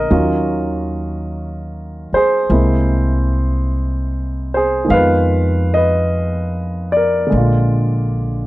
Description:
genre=jazz ballad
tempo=50 BPM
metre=4/4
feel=swing 69% on 8ths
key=Eb minor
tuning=A4 = 441 Hz
part: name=warm grand piano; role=accompaniment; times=0.0-8.5 s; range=C3 to F5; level=-17 LUFS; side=equal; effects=none
part: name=upright bass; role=bass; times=0.0-8.5 s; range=Bb1 to F2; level=-18 LUFS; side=equal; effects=none
room=light reverb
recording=dry, close 1970s-style studio recording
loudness=-14 LUFS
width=side -17 dB against mid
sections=0.0-8.5 A section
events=none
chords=0.1 Ebm9; 2.5 Caug7; 4.9 Fm7b5; 7.3 Bb7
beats=| 0.10 1.30 2.50 3.70 | 4.90 6.11 7.31

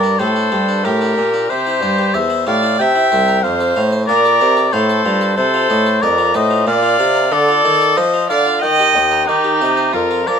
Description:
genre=classical, baroque-style sonata movement with continuo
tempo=92 BPM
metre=3/4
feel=rubato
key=F major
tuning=A4 = 438 Hz
part: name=warm oboe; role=melody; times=0.0-10.4 s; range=G4 to G5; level=-16 LUFS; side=left 4 dB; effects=none
part: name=warm violin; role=second line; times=0.0-10.4 s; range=Eb4 to E5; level=-17 LUFS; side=right 5 dB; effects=none
part: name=harpsichord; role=accompaniment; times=0.0-10.4 s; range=C2 to F5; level=-22 LUFS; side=equal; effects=none
part: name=clear bassoon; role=bass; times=0.0-10.4 s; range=C2 to F3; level=-20 LUFS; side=right 2 dB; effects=none
room=moderate studio reverb, RT60 0.6 s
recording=minimal, uncompressed stereo recording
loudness=-12 LUFS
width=side -7 dB against mid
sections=0.0-10.4 A section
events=none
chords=0.0 Gm; 1.5 C; 2.8 C7; 3.4 F; 5.4 F7; 6.7 Bb; 7.3 Dm; 8.6 Eb; 9.3 Cm/Eb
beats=0.19 0.84 | 1.49 2.14 2.79 | 3.43 4.08 4.73 | 5.37 6.02 6.67 | 7.32 7.97 8.63 | 9.29 9.94

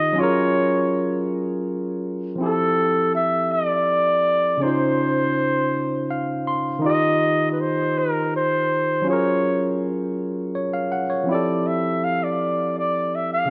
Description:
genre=R&B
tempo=54 BPM (dotted quarters)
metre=6/8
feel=straight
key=unclear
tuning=A4 = 440 Hz
part: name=warm flugelhorn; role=melody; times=0.0-13.5 s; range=A4 to F5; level=-24 LUFS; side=equal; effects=slapback echo
part: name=barky tine electric piano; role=accompaniment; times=0.0-13.5 s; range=Db3 to C6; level=-25 LUFS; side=equal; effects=overdrive
room=light reverb, studio reverb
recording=dark, warm production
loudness=-22 LUFS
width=mono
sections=0.0-2.4 A section; 2.4-13.5 B section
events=tine electric piano fill 5.7-6.8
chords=0.2 Gbmaj9; 2.4 Fmaj9; 4.6 Dbmaj9; 6.8 Ebadd9; 9.1 Gbmaj9; 11.3 Fmaj9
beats=| 0.18 1.29 | 2.40 3.51 | 4.62 5.73 | 6.84 7.95 | 9.06 10.18 | 11.29 12.40

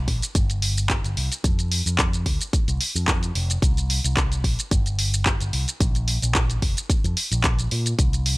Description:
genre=nu-disco, nu disco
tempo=110 BPM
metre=4/4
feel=swing 53% on 16ths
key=unclear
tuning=A4 = 439 Hz
part: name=picked electric bass with an envelope filter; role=bass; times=0.0-8.3 s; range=F1 to Bb2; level=-24 LUFS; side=equal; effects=none
part: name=electronic kick drum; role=drums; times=0.1-8.1 s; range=none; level=-23 LUFS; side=equal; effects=small room ambience
part: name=pop drum kit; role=drums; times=0.1-8.4 s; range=handclaps, hi-hat, shaker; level=-25 LUFS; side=equal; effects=small room ambience
room=digital ambience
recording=dry, gritty hardware recording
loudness=-20 LUFS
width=side -22 dB against mid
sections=0.0-8.4 A section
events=none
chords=none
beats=0.35 0.90 | 1.44 1.99 2.53 3.08 | 3.62 4.17 4.71 5.26 | 5.81 6.35 6.90 7.44 | 7.99

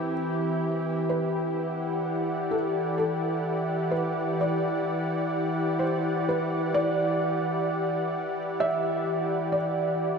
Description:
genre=ambient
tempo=64 BPM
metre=3/4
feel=straight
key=E minor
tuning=A4 = 437 Hz
part: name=felt-muted upright piano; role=melody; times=0.0-10.2 s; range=G4 to E5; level=-30 LUFS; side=right 1 dB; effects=ping-pong delay
part: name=warm analog pad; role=sustained chords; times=0.0-10.2 s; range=E3 to G5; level=-26 LUFS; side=equal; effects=chorus
room=wet cathedral reverb, RT60 5.8 s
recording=in a vast, echoing space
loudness=-25 LUFS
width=side -5 dB against mid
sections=0.0-1.1 A section; 1.1-10.2 A section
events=none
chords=0.0 C/E; 1.1 Em7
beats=0.15 | 1.08 2.02 2.96 | 3.90 4.83 5.77 | 6.71 7.65 8.59 | 9.52

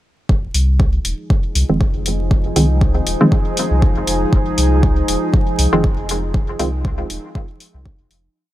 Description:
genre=dub techno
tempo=119 BPM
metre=4/4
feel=swing 56% on 16ths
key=F minor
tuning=A4 = 440 Hz
part: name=deep dark ambient pad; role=sustained chords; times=1.6-8.3 s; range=F3 to Ab4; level=-22 LUFS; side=equal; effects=chorus, built-in reverb, sidechain pumping
part: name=warm sub bass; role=bass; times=0.3-8.3 s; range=Eb1 to C2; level=-18 LUFS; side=equal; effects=sidechain pumping
part: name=electronic kick drum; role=drums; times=0.3-8.0 s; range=none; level=-16 LUFS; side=equal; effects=none
part: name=electronic hi-hat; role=drums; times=0.5-8.2 s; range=none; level=-22 LUFS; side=left 2 dB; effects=none
part: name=filtered dub chord stab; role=stabs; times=1.7-6.7 s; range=Eb3 to C4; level=-20 LUFS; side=equal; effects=chorus, phaser, sidechain pumping, dub echo
room=little or no reverb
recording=vinyl crackle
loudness=-14 LUFS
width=side -14 dB against mid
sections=0.3-8.4 groove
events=fade-out 5.7-8.4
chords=0.3 Fm7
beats=| 0.29 0.80 1.30 1.81 | 2.31 2.81 3.32 3.82 | 4.33 4.83 5.33 5.84 | 6.34 6.85 7.35 7.86

